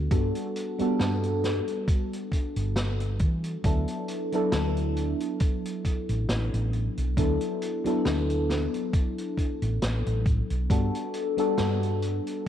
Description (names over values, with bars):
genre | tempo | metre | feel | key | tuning
vaporwave | 68 BPM | 4/4 | swing 55% on 16ths | D major | A4 = 440 Hz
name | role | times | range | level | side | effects
mellow FM electric piano | accompaniment | 0.0-12.5 s | F#3 to A4 | -28 LUFS | left 1 dB | phaser, analog chorus, tape echo
hollow-body short-scale fingered electric bass | bass | 0.0-12.2 s | G1 to E3 | -27 LUFS | equal | none
electronic kick drum | drums | 0.1-10.9 s | none | -25 LUFS | equal | none
vintage drum kit | drums | 0.1-12.4 s | hi-hat, snare drum | -34 LUFS | equal | none
room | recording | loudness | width
light reverb, small room reverb | cassette tape | -25 LUFS | side -10 dB against mid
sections
0.0-12.5 A section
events
none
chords
0.0 Gmaj9; 3.6 D69; 10.7 Gmaj9